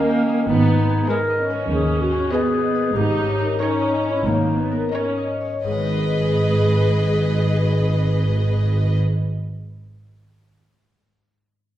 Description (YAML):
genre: cinematic, playful, whimsical film cue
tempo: 84-101 BPM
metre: 4/4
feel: straight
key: G# minor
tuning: A4 = 440 Hz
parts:
  - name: clear chamber violin section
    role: melody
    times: 0.0-9.0 s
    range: D#5 to G#5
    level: -33 LUFS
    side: left 2 dB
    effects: none
  - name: dark clarinet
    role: second line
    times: 0.0-9.0 s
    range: C#4 to A#4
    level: -24 LUFS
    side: left 1 dB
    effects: none
  - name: rich chamber violin section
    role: second line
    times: 0.0-9.0 s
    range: A#4 to D#5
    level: -30 LUFS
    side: left 4 dB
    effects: none
  - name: rich chamber viola section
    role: accompaniment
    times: 0.0-9.0 s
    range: G#3 to G#4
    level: -25 LUFS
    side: right 2 dB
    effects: none
  - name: concert harp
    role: arpeggios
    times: 0.0-9.5 s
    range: G#2 to G5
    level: -26 LUFS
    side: left 3 dB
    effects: none
  - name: clear chamber double bass section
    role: bass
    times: 0.5-9.0 s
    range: G#1 to D#2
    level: -23 LUFS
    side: right 2 dB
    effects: none
  - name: rich symphonic cello section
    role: bass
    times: 0.5-9.0 s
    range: D#2 to G#2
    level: -24 LUFS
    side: right 1 dB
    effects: none
room: wet recital hall reverb, RT60 1.4 s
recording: heard from further back in the room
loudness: -17 LUFS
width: side -12 dB against mid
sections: 0.0-5.6 A section; 5.6-8.5 B section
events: slowing down 0.0-5.6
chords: 0.5 G#m; 3.0 D#7/G#; 5.6 G#m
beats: | 0.48 1.08 1.70 2.32 | 2.95 3.60 4.25 4.94 | 5.64 6.34 7.05 7.76